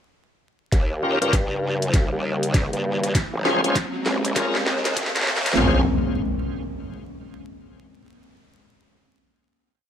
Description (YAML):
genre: glitch hop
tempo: 99 BPM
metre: 4/4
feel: swing 62% on 16ths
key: Bb dorian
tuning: A4 = 440 Hz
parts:
  - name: warbly tape-like pad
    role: sustained chords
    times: 1.3-5.9 s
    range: Db3 to Eb4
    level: -29 LUFS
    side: left 1 dB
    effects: chorus, built-in reverb, vintage 12-bit sampler grit, sidechain pumping
  - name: growl bass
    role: bass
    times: 0.7-5.9 s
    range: Ab1 to G2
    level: -25 LUFS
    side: equal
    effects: chorus, high-pass filter
  - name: drum and bass drum kit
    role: drums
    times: 0.7-5.7 s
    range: kick drum, snare drum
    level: -21 LUFS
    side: equal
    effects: none
  - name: drum and bass drum kit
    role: drums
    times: 0.7-5.6 s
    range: hi-hat, rim click, snare drum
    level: -25 LUFS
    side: equal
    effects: high-pass filter on snare, high-pass filter on hats, high-pass filter on room
  - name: riser and impact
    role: sound effects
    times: 2.7-8.0 s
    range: none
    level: -29 LUFS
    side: equal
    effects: none
  - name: bright tonewheel organ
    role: stabs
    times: 1.0-5.8 s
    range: Db4 to C5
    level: -25 LUFS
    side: left 2 dB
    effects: overdrive, chorus vibrato, slow rotary speaker, sidechain pumping, ping-pong delay
room: light reverb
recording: vinyl crackle, high-pass filter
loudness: -20 LUFS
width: side -9 dB against mid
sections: 0.7-5.6 build; 5.6-8.0 final chord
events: build-up 0.7-5.6; drum fill 0.7-5.6; filter sweep on ambient pad 0.7-5.6; filter sweep 0.7-5.6; riser 2.7-5.6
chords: 0.7 Eb7; 3.1 Bbm9